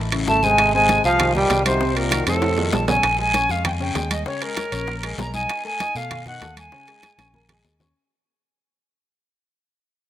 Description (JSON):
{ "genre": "Afro-Cuban jazz", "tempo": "195 BPM", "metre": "4/4", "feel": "straight", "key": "unclear", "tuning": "A4 = 440 Hz", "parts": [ { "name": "warm baby grand piano", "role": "accompaniment", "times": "0.0-7.9 s", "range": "C3 to Eb6", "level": "-29 LUFS", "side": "left 3 dB", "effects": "none" }, { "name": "fingered electric bass", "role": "bass", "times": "0.0-7.9 s", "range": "Ab1 to B2", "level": "-26 LUFS", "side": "equal", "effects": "none" }, { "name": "bongos", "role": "percussion", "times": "0.1-7.9 s", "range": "none", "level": "-33 LUFS", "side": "left 6 dB", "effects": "none" }, { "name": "congas", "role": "percussion", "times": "0.1-7.9 s", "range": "none", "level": "-31 LUFS", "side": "left 1 dB", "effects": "none" }, { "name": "timbales", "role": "percussion", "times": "0.1-7.6 s", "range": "none", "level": "-27 LUFS", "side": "right 5 dB", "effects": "none" }, { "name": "silver concert flute", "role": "melody", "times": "0.3-7.6 s", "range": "A4 to Bb5", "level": "-21 LUFS", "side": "equal", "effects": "none" }, { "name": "bright trombone", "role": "second line", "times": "0.3-2.7 s", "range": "A2 to A3", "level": "-23 LUFS", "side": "right 2 dB", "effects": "none" }, { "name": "guiro", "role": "percussion", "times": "0.3-8.0 s", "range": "none", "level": "-33 LUFS", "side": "left 3 dB", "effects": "none" } ], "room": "moderate lush hall reverb, RT60 2.8 s", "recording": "rough home demo mix", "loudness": "-18 LUFS", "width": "side -12 dB against mid", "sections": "0.0-3.0 A section; 3.0-8.0 B section", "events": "drum fill 2.4-3.0, 7.0-8.0; fade-out 3.0-8.0", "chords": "0.0 A; 0.6 Abmaj7; 1.8 Cm7b5; 2.4 F7b13; 3.0 Bbm7; 4.3 Eb7sus4; 5.5 B7; 6.7 Eb7sus4" }